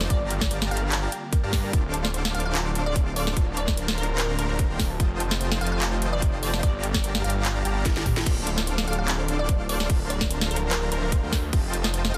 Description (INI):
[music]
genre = future bass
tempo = 147 BPM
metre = 4/4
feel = swing 54% on 16ths, half-time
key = G minor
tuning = A4 = 440 Hz
[part]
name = glassy wavetable pluck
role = melody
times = 0.0-12.2 s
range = Bb4 to F5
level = -36 LUFS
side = equal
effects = chorus, sidechain pumping, digital delay
[part]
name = ethereal airy pad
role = sustained chords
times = 0.0-12.2 s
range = D3 to F4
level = -43 LUFS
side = equal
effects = none
[part]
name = thumb-piano-like synth pluck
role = arpeggios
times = 0.0-12.2 s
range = F4 to A5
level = -42 LUFS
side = equal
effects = none
[part]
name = dense compressed supersaw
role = riff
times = 0.0-12.2 s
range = D4 to D6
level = -34 LUFS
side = equal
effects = sidechain pumping
[part]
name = detuned saw bass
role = bass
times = 0.0-12.2 s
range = D1 to G2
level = -30 LUFS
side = equal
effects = chorus, tube saturation, sidechain pumping
[part]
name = trap drum kit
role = drums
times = 0.0-12.2 s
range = crash cymbal, handclaps, hi-hat, snare drum, toms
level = -30 LUFS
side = equal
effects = studio reverb
[part]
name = electronic kick drum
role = drums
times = 0.1-11.6 s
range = none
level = -26 LUFS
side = equal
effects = studio reverb
[sound]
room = light reverb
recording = dense, heavily limited modern master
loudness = -25 LUFS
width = mono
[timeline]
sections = 0.0-12.2 A section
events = drum fill 7.9-8.3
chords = 0.1 Gm7; 1.7 Dm7; 3.4 Bbmaj7/D; 5.0 F7; 6.6 Gm7; 8.3 Dm7; 9.9 Bbmaj7/D; 11.5 F7